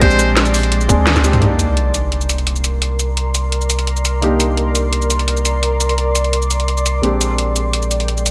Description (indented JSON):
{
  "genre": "liquid drum and bass",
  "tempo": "171 BPM",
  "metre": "4/4",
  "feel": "straight",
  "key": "C minor",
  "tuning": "A4 = 439 Hz",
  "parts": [
    { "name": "dark baby grand piano", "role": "accompaniment", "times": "0.0-8.3 s", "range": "Ab3 to G5", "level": "-24 LUFS", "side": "equal", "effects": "delay" },
    { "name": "shimmering ambient pad", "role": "sustained chords", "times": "0.0-8.3 s", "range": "Ab3 to C6", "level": "-25 LUFS", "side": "equal", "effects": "chorus, built-in reverb, sidechain pumping" },
    { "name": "warm sub bass", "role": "bass", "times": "0.0-8.3 s", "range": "F1 to D2", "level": "-20 LUFS", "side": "equal", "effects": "none" },
    { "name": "drum and bass drum kit", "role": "drums", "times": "0.0-8.3 s", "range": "cabasa, hi-hat, rim click, snare drum, toms", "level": "-21 LUFS", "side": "equal", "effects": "none" },
    { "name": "electronic kick drum", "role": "drums", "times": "0.0-1.2 s", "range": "none", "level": "-18 LUFS", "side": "equal", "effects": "none" },
    { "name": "sub drop", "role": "sound effects", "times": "1.4-2.8 s", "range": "none", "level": "-24 LUFS", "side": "equal", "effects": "none" }
  ],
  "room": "light reverb",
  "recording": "none",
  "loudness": "-16 LUFS",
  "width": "mono",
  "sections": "0.0-1.4 A section; 1.4-8.3 B section",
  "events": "drop 0.0-1.4; drum fill 1.1-1.4; band accent 1.1; impact 1.4-2.8",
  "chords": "0.0 Bb13; 1.4 Cm9; 7.0 Bb13",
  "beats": "| 0.01 0.36 0.72 1.07 | 1.42 1.77 2.12 2.47 | 2.82 3.17 3.52 3.87 | 4.22 4.58 4.93 5.28 | 5.63 5.98 6.33 6.68 | 7.03 7.38 7.73 8.08"
}